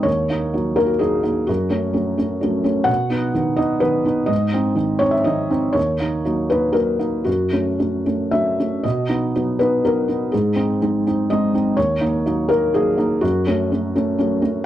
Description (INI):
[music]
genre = neoclassical minimalist piano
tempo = 112-131 BPM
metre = 3/4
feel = rubato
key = B major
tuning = A4 = 440 Hz
[part]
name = felt-muted upright piano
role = solo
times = 0.0-14.7 s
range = D#2 to F#5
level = -17 LUFS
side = equal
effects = none
[sound]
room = light reverb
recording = worn, warbling old tape, cassette tape, warbly pitch drift, nothing above 10.9 kHz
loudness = -17 LUFS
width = side -12 dB against mid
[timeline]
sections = 0.0-8.8 A section; 8.8-14.7 A section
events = none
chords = 0.1 D#m; 1.5 F#m; 2.9 B; 4.3 G#; 5.8 D#m; 7.3 F#m; 8.8 B; 10.3 G#; 11.8 D#m; 13.2 F#m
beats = | 0.06 0.55 1.02 | 1.49 1.96 2.42 | 2.89 3.36 3.83 | 4.30 4.78 5.27 | 5.76 6.25 6.75 | 7.26 7.79 8.32 | 8.84 9.35 9.84 | 10.32 10.81 11.29 | 11.77 12.26 12.74 | 13.22 13.71 14.18 | 14.65